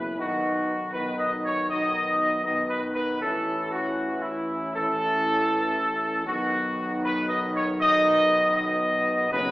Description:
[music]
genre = classical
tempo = 79 BPM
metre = 4/4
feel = straight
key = B major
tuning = A4 = 440 Hz
[part]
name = warm trumpet section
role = melody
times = 0.0-9.5 s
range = E4 to D#5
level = -24 LUFS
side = equal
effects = none
[part]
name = bright trombone section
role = sustained chords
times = 0.0-9.5 s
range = B2 to F#3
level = -34 LUFS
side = equal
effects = none
[part]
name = warm French horn section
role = sustained chords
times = 0.0-9.5 s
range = B3 to D#4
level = -32 LUFS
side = equal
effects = none
[part]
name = mellow tuba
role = bass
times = 0.0-9.5 s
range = F#1 to B1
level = -34 LUFS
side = equal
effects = none
[part]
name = timpani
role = percussion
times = 9.3-9.5 s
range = F#2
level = -34 LUFS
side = equal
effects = none
[sound]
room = wet recital hall reverb, RT60 1.3 s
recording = heard from further back in the room, AM radio sound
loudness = -22 LUFS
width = side -18 dB against mid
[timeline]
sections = 0.0-9.5 A section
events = none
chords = 0.2 B; 3.2 A; 6.3 B

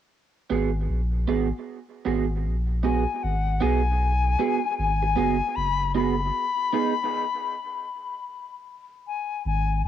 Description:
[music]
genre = dub reggae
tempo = 77 BPM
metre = 4/4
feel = swing 64% on 16ths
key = G# minor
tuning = A4 = 440 Hz
[part]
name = electric guitar at the edge of break-up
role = accompaniment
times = 0.5-6.9 s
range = B3 to G#4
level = -27 LUFS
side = right 9 dB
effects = analog chorus, cassette tape, dub echo
[part]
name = warm sub bass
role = bass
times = 0.5-9.9 s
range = F#1 to B1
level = -25 LUFS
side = equal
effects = none
[part]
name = reedy silver concert flute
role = melody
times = 2.8-9.9 s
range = F#5 to B5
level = -26 LUFS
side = left 7 dB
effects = cassette tape, dub echo
[sound]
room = light reverb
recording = home recording on cassette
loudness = -23 LUFS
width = side -10 dB against mid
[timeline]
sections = 0.1-3.2 A section; 3.2-9.9 B section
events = break 6.3-9.9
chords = 0.1 G#m7; 6.3 B6

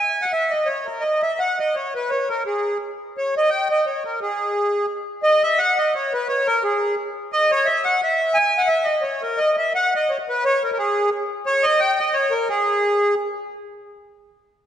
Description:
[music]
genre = musette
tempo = 173 BPM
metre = 3/4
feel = swing 54% on 8ths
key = G# minor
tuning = A4 = 435 Hz
[part]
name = accordion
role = solo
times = 0.0-13.1 s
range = G#4 to G#5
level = -18 LUFS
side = equal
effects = none
[sound]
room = wet concert hall reverb, RT60 2.0 s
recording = recorded in a church or concert hall, nothing above 10.6 kHz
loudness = -18 LUFS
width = side -10 dB against mid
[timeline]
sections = 0.0-5.2 A section; 5.2-13.5 A section; 13.5-14.6 B section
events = none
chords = none

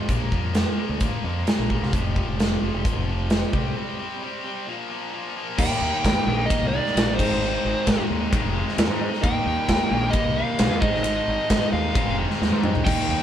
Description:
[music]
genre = classic rock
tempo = 132 BPM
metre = 4/4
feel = straight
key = unclear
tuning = A4 = 440 Hz
[part]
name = tight distorted guitar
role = riff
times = 0.0-13.2 s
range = F2 to Eb4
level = -29 LUFS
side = left 2 dB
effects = distortion
[part]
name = growling fingered electric bass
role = bass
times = 0.1-13.2 s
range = F1 to Ab2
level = -27 LUFS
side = equal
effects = overdrive
[part]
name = big rock drum kit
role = drums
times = 0.1-13.0 s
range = crash cymbal, hi-hat, kick drum, ride cymbal, snare drum, toms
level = -23 LUFS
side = equal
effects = none
[part]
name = fuzz lead guitar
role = melody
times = 5.6-13.2 s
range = C5 to G5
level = -26 LUFS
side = right 1 dB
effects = distortion
[part]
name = bright reed electric piano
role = accompaniment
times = 5.6-13.2 s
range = Eb4 to Eb5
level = -34 LUFS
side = right 4 dB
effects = overdrive
[part]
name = overdriven electric guitar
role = riff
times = 5.6-13.2 s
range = Ab2 to Eb4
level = -30 LUFS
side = left 1 dB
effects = none
[sound]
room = moderate stone room reverb, RT60 1.2 s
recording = band playing live in one room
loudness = -20 LUFS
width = side -10 dB against mid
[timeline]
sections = 0.0-5.6 A section; 5.6-13.2 B section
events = break 3.8-5.6; drum fill 12.4-12.9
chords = 0.1 Bb5; 1.9 F5; 3.5 C5; 4.7 Bb5; 5.6 Eb; 7.2 Ab; 9.2 Eb; 10.8 Ab

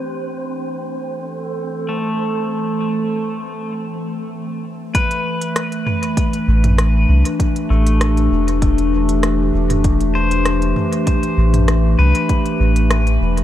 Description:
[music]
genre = ambient dub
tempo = 98 BPM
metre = 4/4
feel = swing 53% on 16ths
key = A minor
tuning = A4 = 441 Hz
[part]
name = warbly tape-like pad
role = sustained chords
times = 0.0-13.4 s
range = E3 to A4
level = -20 LUFS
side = left 1 dB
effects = chorus, built-in reverb
[part]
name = wind-like tuned noise texture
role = texture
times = 0.0-3.7 s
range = C4 to C5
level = -30 LUFS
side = right 1 dB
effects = built-in reverb
[part]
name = pedal steel guitar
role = arpeggios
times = 1.9-13.4 s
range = A3 to C5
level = -24 LUFS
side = left 2 dB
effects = low-pass filter, tape echo
[part]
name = electronic kick drum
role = drums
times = 4.9-12.4 s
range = none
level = -18 LUFS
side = equal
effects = overdrive
[part]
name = organic electronic drum kit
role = drums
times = 4.9-13.4 s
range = hi-hat, rim click, toms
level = -24 LUFS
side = right 1 dB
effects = dub echo
[part]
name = soft dub sub bass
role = bass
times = 6.5-13.4 s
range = E1 to C2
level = -15 LUFS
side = equal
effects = none
[sound]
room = light reverb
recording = none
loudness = -15 LUFS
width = side -12 dB against mid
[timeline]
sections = 0.0-4.9 A section; 4.9-13.4 B section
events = break 3.7-4.9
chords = 0.0 Am7

